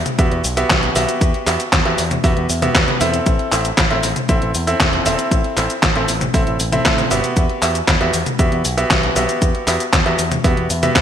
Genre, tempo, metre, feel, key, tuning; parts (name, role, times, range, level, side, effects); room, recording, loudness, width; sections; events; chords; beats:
italo disco; 117 BPM; 4/4; straight; E minor; A4 = 442 Hz
picked electric bass with an envelope filter; bass; 0.0-11.0 s; E1 to A2; -22 LUFS; equal
detuned 8-bit digital drum machine; drums; 0.1-11.0 s; cabasa, handclaps, hi-hat, snare drum, toms; -18 LUFS; left 1 dB; gated reverb
clear concert grand piano; stabs; 0.2-11.0 s; B3 to E5; -20 LUFS; right 1 dB; ping-pong delay
electronic kick drum; drums; 0.2-11.0 s; -18 LUFS; equal
moderate lush hall reverb, RT60 1.9 s; bright 1980s-style digital production; -14 LUFS; side -9 dB against mid
0.0-11.0 A section
0.0 Emadd9; 3.3 Am; 7.4 Emadd9
0.19 0.70 | 1.21 1.73 2.24 2.75 | 3.26 3.78 4.29 4.80 | 5.32 5.83 6.34 6.85 | 7.37 7.88 8.39 8.90 | 9.42 9.93 10.44 10.96